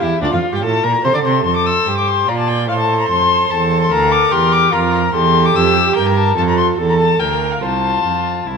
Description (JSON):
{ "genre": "quick classical-period movement for string quartet", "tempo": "146 BPM", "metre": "3/4", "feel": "straight", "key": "F major from 3.9 s", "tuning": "A4 = 444 Hz", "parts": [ { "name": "dark violin", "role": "melody", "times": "0.0-8.6 s", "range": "D5 to E6", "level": "-16 LUFS", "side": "left 9 dB", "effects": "none" }, { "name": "dark violin", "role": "second line", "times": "0.0-8.6 s", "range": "D4 to D5", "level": "-20 LUFS", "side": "left 1 dB", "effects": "none" }, { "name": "warm viola", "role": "accompaniment", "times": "0.0-8.6 s", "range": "F4 to D5", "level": "-20 LUFS", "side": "right 6 dB", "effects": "none" }, { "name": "rich cello", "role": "bass", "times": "0.0-8.6 s", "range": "C2 to D3", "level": "-18 LUFS", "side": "right 5 dB", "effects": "none" } ], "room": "moderate scoring stage reverb, RT60 1.5 s", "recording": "none", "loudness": "-12 LUFS", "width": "side -5 dB against mid", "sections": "0.0-8.6 A section", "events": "none", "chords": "0.2 Dm; 1.5 F; 3.9 Bb/D; 5.1 Gm13/E; 6.4 F; 7.2 Bb/D; 7.6 F/C", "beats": "| 0.22 0.64 1.05 | 1.46 1.87 2.28 | 2.69 3.10 3.51 | 3.91 4.32 4.73 | 5.14 5.55 5.96 | 6.37 6.78 7.20 | 7.62 8.04 8.47" }